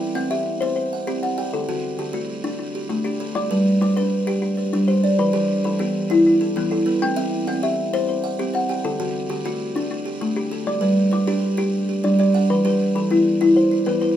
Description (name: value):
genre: southern african traditional, mbira-style interlocking cycle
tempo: 131 BPM (dotted quarters)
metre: 12/8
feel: straight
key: G major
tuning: A4 = 440 Hz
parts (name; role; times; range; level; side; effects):
- buzzing kalimba; arpeggios; 0.0-14.2 s; D3 to G5; -21 LUFS; right 2 dB; none
- kalimba; arpeggios; 0.0-14.2 s; D3 to G5; -22 LUFS; left 3 dB; none
room: wet studio ambience, RT60 0.5 s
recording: minimal, uncompressed stereo recording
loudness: -18 LUFS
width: side -10 dB against mid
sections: 0.0-10.7 A section; 10.7-14.2 A section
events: none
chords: 0.0 C; 1.5 D; 3.4 G; 5.2 Em; 7.0 C; 8.8 D; 10.7 G; 12.5 Em